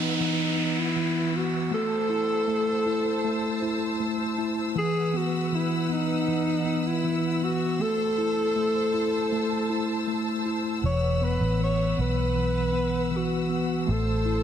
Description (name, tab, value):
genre	pop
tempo	79 BPM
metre	4/4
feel	straight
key	unclear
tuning	A4 = 441 Hz
part	dark alto saxophone	melody	0.0-14.4 s	D#4 to C#5	-28 LUFS	equal	none
part	tine electric piano	accompaniment	0.0-14.4 s	E3 to E4	-27 LUFS	equal	medium stereo tremolo
part	warm studio string section	sustained chords	0.0-14.4 s	B4 to E6	-33 LUFS	left 1 dB	none
part	downlifter	sound effects	0.0-4.8 s	none	-33 LUFS	right 1 dB	none
part	vintage muted fingered electric bass	bass	10.8-14.4 s	E1 to B1	-27 LUFS	equal	none
room	moderate plate reverb, RT60 3.2 s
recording	none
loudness	-23 LUFS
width	side -9 dB against mid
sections	0.0-14.4 A section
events	none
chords	0.0 Esus2; 1.7 Am; 4.8 Esus2; 7.8 Am; 10.8 Esus2; 13.9 Am